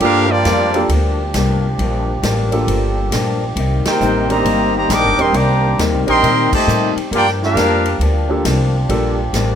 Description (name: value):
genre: jazz, big band swing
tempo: 135 BPM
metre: 4/4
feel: swing 65% on 8ths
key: G minor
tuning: A4 = 440 Hz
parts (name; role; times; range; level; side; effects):
- warm trumpet section; melody; 0.0-0.9, 3.9-8.0 s; Bb3 to D6; -16 LUFS; right 1 dB; none
- brilliant trombone section; second line; 0.0-0.9, 3.9-8.0 s; Bb2 to G4; -20 LUFS; right 1 dB; none
- fingerpicked steel-string acoustic guitar; accompaniment; 0.0-9.6 s; G2 to Eb4; -22 LUFS; left 7 dB; none
- warm baby grand piano; accompaniment; 0.0-9.2 s; Bb3 to Bb4; -21 LUFS; right 2 dB; none
- mellow trombone section; sustained chords; 0.0-9.6 s; Eb3 to G4; -24 LUFS; right 1 dB; none
- upright bass; bass; 0.0-9.6 s; Eb1 to Bb2; -18 LUFS; equal; none
- swinging big-band drum kit; drums; 0.0-9.5 s; crash cymbal, hi-hat, kick drum, ride cymbal, snare drum; -25 LUFS; equal; none
room: moderate club reverb, RT60 0.6 s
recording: none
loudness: -13 LUFS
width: side -8 dB against mid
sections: 0.0-9.6 A section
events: band accent 3.8, 6.5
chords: 0.0 Gm7; 3.6 Cm7; 7.1 Gm7